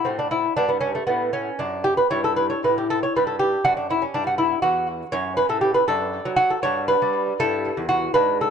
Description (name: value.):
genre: classical, baroque-style dance for lute.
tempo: 79 BPM (dotted quarters).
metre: 6/8.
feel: rubato.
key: D major.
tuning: A4 = 439 Hz.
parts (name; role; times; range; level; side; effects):
lute; solo; 0.0-8.5 s; E2 to C#5; -19 LUFS; equal; tape echo.
room: light reverb.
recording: nothing above 11.0 kHz.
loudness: -19 LUFS.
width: side -7 dB against mid.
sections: 0.0-8.5 A section.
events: none.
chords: 0.0 D5; 0.6 G; 2.1 A5/G; 3.6 D/F#; 5.1 F#m; 5.9 D/F#; 6.6 G; 7.4 Em/G.